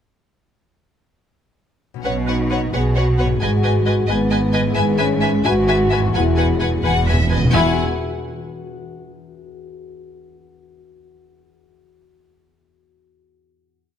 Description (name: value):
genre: cinematic, heroic adventure film score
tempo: 88 BPM (dotted quarters)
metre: 6/8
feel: straight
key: E major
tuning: A4 = 440 Hz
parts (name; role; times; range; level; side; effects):
- concert harp; arpeggios; 1.9-8.6 s; E2 to F#5; -27 LUFS; left 10 dB; none
- warm symphonic violin section; melody; 2.0-7.8 s; F#5 to G#5; -26 LUFS; left 4 dB; none
- rich symphonic violin section; second line; 2.0-7.8 s; C#5 to F#5; -26 LUFS; left 2 dB; none
- warm symphonic viola section; accompaniment; 2.0-7.8 s; E4 to B4; -28 LUFS; right 1 dB; none
- mellow French horn section; sustained chords; 2.0-7.7 s; B3 to G#4; -22 LUFS; left 2 dB; none
- rich symphonic double bass section; bass; 2.0-7.8 s; E1 to B1; -23 LUFS; right 3 dB; none
- warm symphonic cello section; bass; 2.0-7.8 s; E2 to B2; -21 LUFS; right 2 dB; none
- timpani; percussion; 6.1-7.8 s; E2; -22 LUFS; equal; none
room: light reverb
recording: close, detailed microphones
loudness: -15 LUFS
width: side -9 dB against mid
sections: 2.0-7.5 theme; 7.5-8.9 final chord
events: timpani fill 6.2-7.5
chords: 2.0 Badd9; 3.4 G#m7; 4.8 C#m7/G#; 6.2 Eadd9